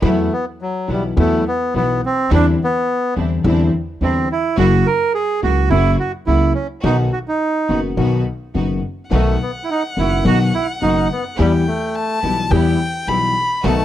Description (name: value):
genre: tango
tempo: 106 BPM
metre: 4/4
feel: rubato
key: E harmonic minor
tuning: A4 = 440 Hz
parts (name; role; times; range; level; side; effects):
- bandoneon; melody; 0.0-13.8 s; F#3 to A#4; -19 LUFS; right 2 dB; none
- dark concert grand piano; accompaniment; 0.0-13.8 s; F#1 to G4; -19 LUFS; left 4 dB; none
- bright studio string section; stabs; 0.0-13.8 s; F#3 to G4; -27 LUFS; right 3 dB; none
- upright bass; bass; 0.0-13.8 s; F#1 to E2; -19 LUFS; right 2 dB; none
- warm violin; second line; 9.1-13.8 s; F#5 to B5; -22 LUFS; left 2 dB; none
room: small room ambience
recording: dry, close 1970s-style studio recording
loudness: -15 LUFS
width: side -12 dB against mid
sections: 0.0-13.8 A section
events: none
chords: 0.0 Esus2; 2.3 Cadd9/E; 4.6 F#7; 6.8 B; 11.4 Em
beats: | 0.03 0.60 1.17 1.74 | 2.31 2.87 3.44 4.01 | 4.58 5.14 5.71 6.27 | 6.84 7.41 7.97 8.54 | 9.11 9.68 10.25 10.82 | 11.38 11.95 12.51 13.08 | 13.64